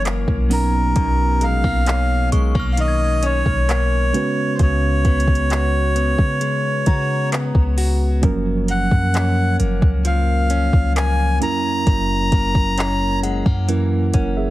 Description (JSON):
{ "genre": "contemporary R&B", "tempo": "66 BPM", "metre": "4/4", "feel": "straight", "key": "F# major", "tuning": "A4 = 441 Hz", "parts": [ { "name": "melodica", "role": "melody", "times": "0.0-13.2 s", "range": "A#4 to A#5", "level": "-22 LUFS", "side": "equal", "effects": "tape echo" }, { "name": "mellow tine electric piano", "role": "accompaniment", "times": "0.0-14.5 s", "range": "E#3 to F#5", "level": "-24 LUFS", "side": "right 4 dB", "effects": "none" }, { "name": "direct-recorded clean electric guitar", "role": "arpeggios", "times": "0.0-14.5 s", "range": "F#2 to F#4", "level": "-26 LUFS", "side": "left 4 dB", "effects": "none" }, { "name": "clean 808-style bass", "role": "bass", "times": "0.0-14.5 s", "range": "F#1 to C#3", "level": "-19 LUFS", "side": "equal", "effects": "none" }, { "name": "smooth R&B drum kit", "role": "drums", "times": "0.1-14.4 s", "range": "handclaps, hi-hat, kick drum", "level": "-20 LUFS", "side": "equal", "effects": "overdrive" }, { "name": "synth chime", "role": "texture", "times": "2.3-14.2 s", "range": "F#5 to G#6", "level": "-33 LUFS", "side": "left 2 dB", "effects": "ensemble chorus, tape echo" } ], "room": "digital ambience", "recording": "heavily compressed radio sound", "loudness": "-16 LUFS", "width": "side -16 dB against mid", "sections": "0.0-14.5 A section", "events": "none", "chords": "0.0 F#7; 0.5 Bmaj9; 4.1 C#7sus4; 8.2 F#maj7; 11.4 F#7" }